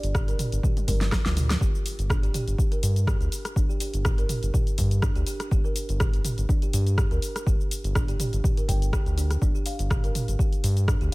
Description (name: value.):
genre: afro house.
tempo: 123 BPM.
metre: 4/4.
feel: swing 54% on 16ths.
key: G minor.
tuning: A4 = 440 Hz.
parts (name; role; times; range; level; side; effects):
kalimba; arpeggios; 0.0-11.1 s; D4 to G5; -35 LUFS; right 1 dB; sidechain pumping, digital delay.
round analog bass; bass; 0.0-11.1 s; G1 to G2; -25 LUFS; equal; sidechain pumping.
deep house drum kit; drums; 0.0-11.1 s; hi-hat, rim click, shaker, snare drum, toms; -31 LUFS; equal; studio reverb.
electronic kick drum; drums; 0.1-11.0 s; none; -24 LUFS; equal; studio reverb.
room: little or no reverb.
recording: none.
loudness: -22 LUFS.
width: side -23 dB against mid.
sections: 0.0-11.1 A section.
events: drum fill 0.6-1.6.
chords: 0.0 G5.